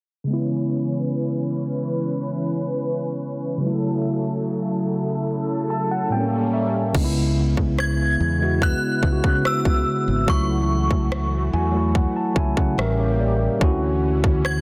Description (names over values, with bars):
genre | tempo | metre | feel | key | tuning
contemporary R&B | 72 BPM | 4/4 | straight | C# phrygian | A4 = 442 Hz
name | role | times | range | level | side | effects
mellow tine electric piano | accompaniment | 0.2-14.6 s | A2 to A5 | -26 LUFS | equal | none
warm analog pad | sustained chords | 0.3-14.6 s | C#3 to B4 | -30 LUFS | equal | chorus
fingered electric bass | bass | 6.9-14.6 s | G#1 to C#3 | -25 LUFS | equal | none
trap drum kit | drums | 6.9-14.6 s | crash cymbal, kick drum, rim click | -25 LUFS | equal | soft clipping on snare
synth chime | melody | 7.8-14.6 s | C#6 to G#6 | -28 LUFS | equal | ensemble chorus, tremolo, delay
room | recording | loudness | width
light reverb | dense, heavily limited modern master, low-pass filter | -22 LUFS | mono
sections
0.3-7.0 A section; 7.0-14.6 B section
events
filter sweep 0.3-7.0; tine electric piano fill 5.3-7.0, 11.1-13.6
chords
0.3 C#m7; 3.6 F#m7/C#; 6.1 A7b9; 7.0 C#m7; 10.3 F#m7/C#; 12.8 A7b9; 13.6 Dmaj9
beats
| 0.28 1.12 1.95 2.78 | 3.62 4.45 5.28 6.12 | 6.95 7.78 8.62 9.45 | 10.28 11.12 11.95 12.78 | 13.62 14.45